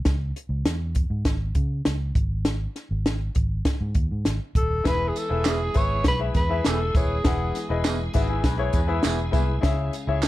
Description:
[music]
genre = uptempo 1960s-style soul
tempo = 100 BPM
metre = 4/4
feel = straight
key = E major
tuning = A4 = 440 Hz
[part]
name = vintage muted fingered electric bass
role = bass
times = 0.1-10.3 s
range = D#1 to C#3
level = -26 LUFS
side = equal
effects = none
[part]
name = compact cocktail drum kit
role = drums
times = 0.1-10.3 s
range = hi-hat, kick drum, snare drum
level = -24 LUFS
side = equal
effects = none
[part]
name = breathy tenor saxophone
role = melody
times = 4.6-7.9 s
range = G#4 to C#5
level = -27 LUFS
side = equal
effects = none
[part]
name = clear concert grand piano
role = accompaniment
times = 4.8-10.3 s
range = C#3 to F#5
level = -29 LUFS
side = left 5 dB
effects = none
[part]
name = tonewheel organ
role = sustained chords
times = 4.8-10.3 s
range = G#3 to G#4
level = -38 LUFS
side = right 1 dB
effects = slow rotary speaker, overdrive, chorus vibrato
[part]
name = tambourine and handclaps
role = percussion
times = 4.9-10.3 s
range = none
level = -35 LUFS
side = right 8 dB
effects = none
[part]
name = electric guitar through a small old amp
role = stabs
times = 5.4-10.3 s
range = B3 to G#4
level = -33 LUFS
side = right 6 dB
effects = spring reverb
[part]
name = electric guitar through a small old amp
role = riff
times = 8.1-9.6 s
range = D#4 to C#5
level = -33 LUFS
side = left 4 dB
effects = spring reverb
[sound]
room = light reverb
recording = dark, warm production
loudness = -22 LUFS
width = side -15 dB against mid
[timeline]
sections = 0.0-10.3 A section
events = none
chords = 0.1 C#m; 2.2 G#5; 4.8 E; 9.6 C#m

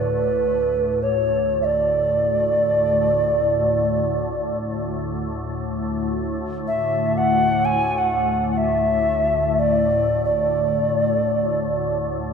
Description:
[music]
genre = world meditative, free-time meditation music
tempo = free time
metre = none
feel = none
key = D major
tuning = A4 = 440 Hz
[part]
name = bright alto ocarina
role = melody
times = 0.0-12.1 s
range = B4 to G#5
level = -19 LUFS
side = right 1 dB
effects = none
[part]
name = soft additive organ-like pad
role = drone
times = 0.0-12.3 s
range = D2 to A2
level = -24 LUFS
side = left 2 dB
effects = ensemble chorus, built-in reverb
[sound]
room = wet echo chamber reverb, RT60 2.5 s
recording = dark, warm production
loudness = -18 LUFS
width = side -6 dB against mid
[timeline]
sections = 0.0-12.3 A section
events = none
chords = none

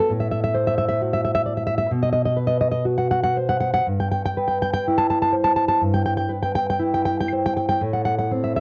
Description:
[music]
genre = romantic piece for solo classical guitar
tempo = 59-68 BPM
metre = 4/4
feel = rubato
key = E minor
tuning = A4 = 441 Hz
[part]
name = nylon-string guitar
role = solo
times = 0.0-8.6 s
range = G2 to A5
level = -22 LUFS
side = equal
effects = cassette tape
[sound]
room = small room ambience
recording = home recording on cassette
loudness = -22 LUFS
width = mono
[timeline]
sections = 0.0-8.6 A section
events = none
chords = 0.1 F#dim/A; 1.9 B5; 3.9 Em/G; 7.8 F#dim/A

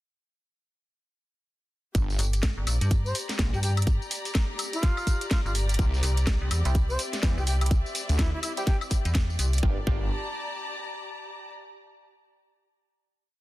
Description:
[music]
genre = bass house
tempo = 125 BPM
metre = 4/4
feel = swing 60% on 16ths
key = G dorian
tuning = A4 = 441 Hz
[part]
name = phased detuned saw bass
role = bass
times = 1.9-10.1 s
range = G1 to E2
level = -28 LUFS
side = equal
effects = phaser, sidechain pumping
[part]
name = electronic kick drum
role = drums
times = 1.9-10.0 s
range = none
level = -25 LUFS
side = equal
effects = none
[part]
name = garage drum kit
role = drums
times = 1.9-9.7 s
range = hi-hat, snare drum, tambourine, woodblock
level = -32 LUFS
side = equal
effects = none
[part]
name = rich studio string section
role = texture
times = 1.9-11.5 s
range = C4 to Bb5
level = -37 LUFS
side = left 2 dB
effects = sidechain pumping
[part]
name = metallic FM bass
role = bass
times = 2.2-9.6 s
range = G1 to G2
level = -25 LUFS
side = equal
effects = tube saturation, sidechain pumping
[part]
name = jazz flute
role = melody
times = 3.1-8.8 s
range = E4 to C5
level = -36 LUFS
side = left 1 dB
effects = ping-pong delay
[part]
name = band-passed chord stab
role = stabs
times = 6.7-10.1 s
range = G3 to G4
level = -40 LUFS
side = right 2 dB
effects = phaser, sidechain pumping, ping-pong delay
[sound]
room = little or no reverb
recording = dense, heavily limited modern master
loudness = -24 LUFS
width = side -17 dB against mid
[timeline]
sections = 1.9-9.6 drop; 9.6-11.5 final chord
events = drop 1.9-9.6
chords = 1.9 Gm; 5.8 C; 9.6 Gm7

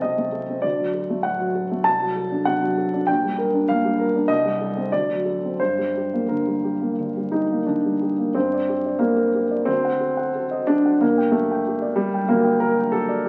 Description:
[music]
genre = classical, romantic character piece for solo piano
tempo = 86-100 BPM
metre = 4/4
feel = rubato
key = G minor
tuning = A4 = 440 Hz
[part]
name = dark grand piano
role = solo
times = 0.0-13.3 s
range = G1 to Bb5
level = -22 LUFS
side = equal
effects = none
[sound]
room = wet stone room reverb, RT60 1.1 s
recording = very old 78 rpm record, vinyl crackle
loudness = -22 LUFS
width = mono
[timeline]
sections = 0.0-8.3 A section; 8.3-13.3 B section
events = none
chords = 0.0 Adim/C; 0.6 D; 1.9 D7/C; 3.1 Gm/Bb; 4.3 Am7b5/C; 4.9 D7; 5.6 Gm; 9.7 D7b9; 11.0 G5

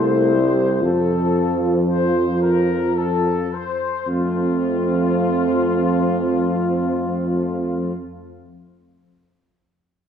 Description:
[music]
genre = classical, hymn-like piece for brass band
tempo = 51-66 BPM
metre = 3/4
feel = rubato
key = F major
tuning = A4 = 440 Hz
[part]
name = warm trumpet section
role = melody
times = 0.0-7.9 s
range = F4 to C5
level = -25 LUFS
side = left 6 dB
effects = none
[part]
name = dark French horn section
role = second line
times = 0.0-7.9 s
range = C4 to F4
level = -26 LUFS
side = right 9 dB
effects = none
[part]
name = clear euphonium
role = accompaniment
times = 0.0-7.9 s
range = A3 to F4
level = -26 LUFS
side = left 4 dB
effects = none
[part]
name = mellow euphonium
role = accompaniment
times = 0.0-7.9 s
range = F3 to A3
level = -26 LUFS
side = right 2 dB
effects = none
[part]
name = clear tuba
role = bass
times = 0.0-7.9 s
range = C2 to F2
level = -21 LUFS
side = equal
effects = none
[sound]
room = moderate concert hall reverb, RT60 1.9 s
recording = recorded in a church or concert hall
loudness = -17 LUFS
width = side -8 dB against mid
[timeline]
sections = 0.0-4.1 A section; 4.1-7.2 B section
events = slowing down 0.0-4.1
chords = 0.0 C; 0.8 F

